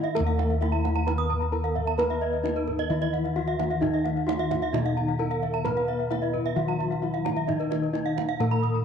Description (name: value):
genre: Balinese gamelan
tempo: 131 BPM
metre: 4/4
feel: straight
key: Eb pelog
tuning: A4 = 440 Hz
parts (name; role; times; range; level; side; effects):
- gamelan-type bronze metallophone; melody; 0.0-8.8 s; Eb4 to Cb5-40c; -31 LUFS; left 1 dB; slapback echo
- gamelan-type bronze metallophone; accompaniment; 0.0-8.8 s; Eb3 to Cb4-40c; -36 LUFS; left 11 dB; none
- gamelan-type bronze metallophone; arpeggios; 0.0-8.8 s; Bb4-45c to Eb6; -33 LUFS; left 11 dB; none
- gamelan-type bronze metallophone; arpeggios; 0.0-8.6 s; Cb5-40c to Eb6; -32 LUFS; right 12 dB; slapback echo
- gamelan-type bossed gongs; bass; 0.0-8.8 s; Eb2 to Cb5-40c; -27 LUFS; equal; none
- kendang; percussion; 0.0-8.7 s; none; -35 LUFS; right 11 dB; none
room: light reverb, studio reverb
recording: 1960s-style stereo with parts hard left and right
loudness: -24 LUFS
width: side -7 dB against mid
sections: 0.1-8.8 A section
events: none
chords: none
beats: | 0.15 0.61 1.07 1.52 | 1.98 2.44 2.90 3.36 | 3.81 4.27 4.73 5.19 | 5.65 6.11 6.56 7.02 | 7.48 7.94 8.39